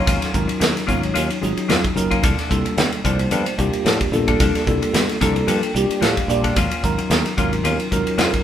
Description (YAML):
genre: electric jazz fusion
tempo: 111 BPM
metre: 4/4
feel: swing 55% on 16ths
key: C dorian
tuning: A4 = 440 Hz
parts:
  - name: mellow tine electric piano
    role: accompaniment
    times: 0.0-8.4 s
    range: Gb3 to Bb5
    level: -22 LUFS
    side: right 1 dB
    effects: medium stereo tremolo, phaser
  - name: clean electric guitar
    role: stabs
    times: 0.0-8.4 s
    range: F3 to A4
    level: -25 LUFS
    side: left 4 dB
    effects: none
  - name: sustaining fretless electric bass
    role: bass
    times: 0.0-8.4 s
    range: Gb1 to A2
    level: -24 LUFS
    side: equal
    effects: none
  - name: modern studio drum kit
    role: drums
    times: 0.1-8.4 s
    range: hi-hat, kick drum, ride cymbal, snare drum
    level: -21 LUFS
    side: equal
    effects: none
  - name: congas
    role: percussion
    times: 0.1-8.0 s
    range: none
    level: -28 LUFS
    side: right 1 dB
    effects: none
room: light reverb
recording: band playing live in one room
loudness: -17 LUFS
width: side -10 dB against mid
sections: 0.0-8.4 A section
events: tine electric piano fill 4.9-6.6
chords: 0.0 Ab13sus4; 2.2 C13sus4; 6.6 Ab13sus4